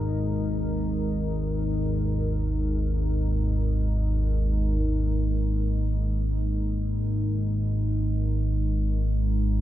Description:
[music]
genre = ambient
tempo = free time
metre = none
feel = none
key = unclear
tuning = A4 = 439 Hz
[part]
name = deep dark ambient pad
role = sustained chords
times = 0.0-9.6 s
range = G#3 to A#4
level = -30 LUFS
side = equal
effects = chorus, built-in reverb
[part]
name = analog drone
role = drone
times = 0.0-9.6 s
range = G#1 to D#2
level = -25 LUFS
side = equal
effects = wide subtle chorus
[part]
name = quartz singing bowl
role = texture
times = 0.0-9.6 s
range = G#4 to A#4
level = -52 LUFS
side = right 3 dB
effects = none
[sound]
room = wet cathedral reverb, RT60 5.7 s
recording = none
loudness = -24 LUFS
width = side -13 dB against mid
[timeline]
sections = 0.0-4.8 A section; 4.8-9.6 B section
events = none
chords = 0.0 G#sus2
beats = free time

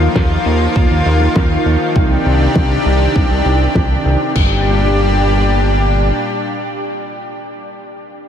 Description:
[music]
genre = synthwave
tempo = 100 BPM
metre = 4/4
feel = straight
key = G minor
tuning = A4 = 443 Hz
[part]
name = lush unison pad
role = sustained chords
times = 0.0-7.5 s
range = Bb2 to G4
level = -16 LUFS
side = left 1 dB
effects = chorus, sidechain pumping
[part]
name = fat analog bass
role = bass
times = 0.0-6.1 s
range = G1 to Eb2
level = -15 LUFS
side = equal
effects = none
[part]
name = damped 70s drum kit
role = drums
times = 0.2-4.5 s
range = crash cymbal, hi-hat, snare drum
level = -23 LUFS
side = left 1 dB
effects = none
[part]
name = electronic kick drum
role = drums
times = 0.2-4.5 s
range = none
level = -16 LUFS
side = equal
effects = studio reverb
[sound]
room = moderate huge ambient reverb, RT60 7.4 s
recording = dreamy mix soaked in reverb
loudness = -12 LUFS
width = side -8 dB against mid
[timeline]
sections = 0.0-4.4 A section; 4.4-6.8 B section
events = none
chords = 0.0 Ebsus2; 2.0 Cmadd9; 4.4 Gm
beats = 0.16 0.76 1.36 | 1.96 2.56 3.16 3.76 | 4.36 4.96 5.56 6.16

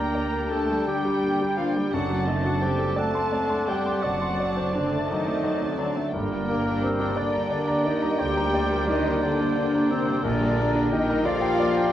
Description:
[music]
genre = classical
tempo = 58 BPM (dotted quarters)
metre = 12/8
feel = rubato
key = G minor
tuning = A4 = 440 Hz
[part]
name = clear grand piano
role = melody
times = 0.0-11.9 s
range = Bb1 to C6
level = -27 LUFS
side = left 1 dB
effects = none
[part]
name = clear studio violin section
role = melody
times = 0.0-11.9 s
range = G5 to A5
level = -40 LUFS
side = equal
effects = none
[part]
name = hollow flute section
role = second line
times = 0.0-11.9 s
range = Bb4 to Bb5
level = -33 LUFS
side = equal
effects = none
[part]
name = mellow clarinet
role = second line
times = 0.0-11.9 s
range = Bb3 to Bb4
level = -30 LUFS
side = left 1 dB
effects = none
[part]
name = warm chamber violin section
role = second line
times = 0.0-11.9 s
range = Bb4 to Bb5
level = -35 LUFS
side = left 3 dB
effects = none
[part]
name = warm oboe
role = second line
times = 0.0-11.9 s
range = Bb4 to A5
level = -34 LUFS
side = equal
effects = none
[part]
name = rich chamber viola section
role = accompaniment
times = 0.0-11.9 s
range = D3 to D4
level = -35 LUFS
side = right 1 dB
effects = none
[part]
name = dark French horn section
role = sustained chords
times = 0.0-11.9 s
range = Bb3 to A4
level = -33 LUFS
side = left 2 dB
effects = none
[part]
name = clear trumpet section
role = stabs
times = 0.0-11.9 s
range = Bb4 to D5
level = -34 LUFS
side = right 2 dB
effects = none
[part]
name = clear chamber double bass section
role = bass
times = 0.0-11.1 s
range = F#1 to D2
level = -32 LUFS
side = right 2 dB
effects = none
[part]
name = clear studio cello section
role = bass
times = 0.0-11.9 s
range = Bb2 to Bb3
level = -32 LUFS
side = right 2 dB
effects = none
[sound]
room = wet recital hall reverb, RT60 1.4 s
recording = worn, warbling old tape, cassette tape, warbly pitch drift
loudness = -22 LUFS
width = side -12 dB against mid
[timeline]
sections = 0.0-11.9 A section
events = none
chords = 0.0 Gm; 1.9 D7/F#; 6.1 Gm; 10.2 Gm/Bb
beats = 0.87 | 1.93 2.97 4.03 5.09 | 6.14 7.18 8.20 9.24 | 10.24 11.27

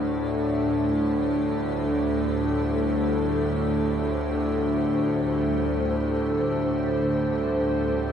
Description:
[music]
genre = dark ambient drone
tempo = free time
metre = none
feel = none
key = unclear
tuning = A4 = 439 Hz
[part]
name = dark analog pad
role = sustained chords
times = 0.0-8.1 s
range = D4 to D5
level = -25 LUFS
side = left 1 dB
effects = lush chorus, shimmer reverb
[part]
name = dark detuned synth bell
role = arpeggios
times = 0.0-8.1 s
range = none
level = barely audible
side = none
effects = none
[part]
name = bowed-like drone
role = drone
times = 0.0-8.1 s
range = D2 to A2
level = -26 LUFS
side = right 1 dB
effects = built-in reverb
[part]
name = icy glass pad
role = texture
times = 0.0-8.1 s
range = G3 to G4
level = -37 LUFS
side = equal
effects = chorus, built-in reverb, shimmer reverb
[sound]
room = wet huge ambient reverb, RT60 8.9 s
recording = cassette tape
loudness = -22 LUFS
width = side -8 dB against mid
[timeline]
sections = 0.0-8.1 A section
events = fade-in on ambient pad 0.0-8.1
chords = 0.0 D5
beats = free time

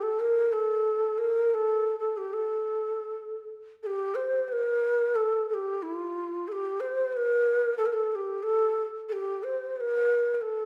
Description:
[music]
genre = arabic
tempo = 91 BPM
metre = 4/4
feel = straight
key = A maqam bayati from 3.8 s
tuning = A4 = 437 Hz
[part]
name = breathy mellow ney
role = solo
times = 0.0-10.7 s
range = F4 to C5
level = -28 LUFS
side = equal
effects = none
[sound]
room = wet recital hall reverb, RT60 1.5 s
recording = none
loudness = -28 LUFS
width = mono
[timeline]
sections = 0.0-3.8 A section; 3.8-10.7 B section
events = none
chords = none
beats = 0.54 | 1.20 1.86 2.52 3.18 | 3.83 4.49 5.15 5.81 | 6.47 7.13 7.79 8.45 | 9.11 9.76 10.42

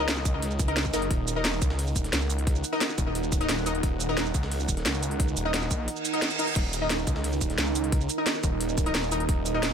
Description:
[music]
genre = dark technical drum and bass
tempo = 176 BPM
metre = 4/4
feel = straight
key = Eb minor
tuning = A4 = 439 Hz
[part]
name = deep dark ambient pad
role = sustained chords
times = 0.0-9.7 s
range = Eb4 to Gb5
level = -33 LUFS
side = right 4 dB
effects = chorus, built-in reverb, sidechain pumping
[part]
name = orchestra-hit-like synth stab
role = stabs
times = 0.0-9.7 s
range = Eb4 to Eb5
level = -31 LUFS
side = left 3 dB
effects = built-in reverb, digital delay
[part]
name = snarling distorted saw bass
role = bass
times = 0.0-9.7 s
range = Eb1 to Db2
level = -30 LUFS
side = equal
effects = overdrive
[part]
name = breakbeat sampler-style drum kit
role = drums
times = 0.1-9.7 s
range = hi-hat, snare drum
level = -39 LUFS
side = equal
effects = none
[part]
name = drum and bass drum kit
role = drums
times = 0.1-9.7 s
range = crash cymbal, hi-hat, shaker, snare drum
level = -30 LUFS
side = right 1 dB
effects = none
[part]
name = electronic kick drum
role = drums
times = 0.3-9.4 s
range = none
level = -27 LUFS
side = equal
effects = none
[part]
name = reverse cymbal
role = sound effects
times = 6.0-6.6 s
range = none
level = -32 LUFS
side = right 5 dB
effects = none
[sound]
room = little or no reverb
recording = none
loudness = -24 LUFS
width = side -7 dB against mid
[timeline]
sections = 0.0-9.7 A section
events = reverse cymbal 6.0-6.6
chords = 0.0 Ebm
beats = 0.08 0.42 0.77 | 1.11 1.45 1.79 2.13 | 2.47 2.81 3.15 3.49 | 3.83 4.17 4.51 4.86 | 5.20 5.54 5.88 6.22 | 6.56 6.90 7.24 7.58 | 7.92 8.27 8.61 8.95 | 9.29 9.63

